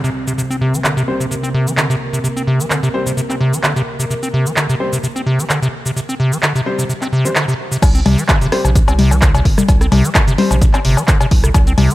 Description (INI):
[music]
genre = acid house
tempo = 129 BPM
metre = 4/4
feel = swing 54% on 16ths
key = unclear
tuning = A4 = 440 Hz
[part]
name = dark analog pad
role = sustained chords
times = 0.0-7.8 s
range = C3 to Bb4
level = -24 LUFS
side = equal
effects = chorus, sidechain pumping
[part]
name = acid bass, square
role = riff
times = 0.0-11.9 s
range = C3 to C4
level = -17 LUFS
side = equal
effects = sidechain pumping, digital delay
[part]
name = punchy analog drum machine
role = drums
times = 0.0-11.9 s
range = congas, cowbell, crash cymbal, handclaps, hi-hat, rim click, shaker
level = -18 LUFS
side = left 2 dB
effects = none
[part]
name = clear baby grand piano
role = stabs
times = 1.1-10.5 s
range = G3 to C5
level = -22 LUFS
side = left 1 dB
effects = digital delay
[part]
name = saturated sub bass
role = bass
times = 7.8-11.9 s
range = G1 to C2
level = -16 LUFS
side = equal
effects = sidechain pumping
[part]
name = electronic kick drum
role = drums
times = 7.8-11.6 s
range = none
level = -13 LUFS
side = equal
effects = none
[sound]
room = light reverb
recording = none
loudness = -13 LUFS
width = side -17 dB against mid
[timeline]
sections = 0.0-7.8 A section; 7.8-11.9 B section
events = drop 7.8-11.9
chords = 0.0 C5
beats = | 0.38 0.85 1.31 1.78 | 2.24 2.71 3.17 3.64 | 4.10 4.57 5.03 5.50 | 5.96 6.43 6.89 7.36 | 7.82 8.29 8.75 9.22 | 9.68 10.15 10.61 11.08 | 11.54